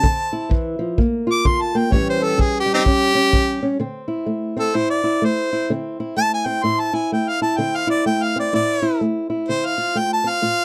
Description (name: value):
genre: acoustic country blues, solo or duo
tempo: 127 BPM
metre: 4/4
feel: swing 61% on 8ths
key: D minor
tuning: A4 = 439 Hz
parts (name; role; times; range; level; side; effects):
- clear harmonica; melody; 0.0-10.6 s; C4 to D6; -22 LUFS; equal; none
- fingerpicked old ladder-braced acoustic guitar; accompaniment; 0.0-10.6 s; E2 to G4; -24 LUFS; equal; none
- kick drum; drums; 0.0-3.5 s; none; -21 LUFS; equal; none
room: little or no reverb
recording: dry, close 1970s-style studio recording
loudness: -20 LUFS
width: mono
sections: 0.0-3.8 A section; 3.8-10.6 A section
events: harmonica solo 0.0-3.8, 3.8-10.6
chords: 0.0 Dm9; 1.0 Gm7; 1.9 A7; 3.8 Dm9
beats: | 0.04 0.51 0.98 1.46 | 1.93 2.40 2.87 3.34 | 3.81 4.28 4.75 5.23 | 5.70 6.17 6.65 7.12 | 7.59 8.06 8.54 9.01 | 9.49 9.96 10.44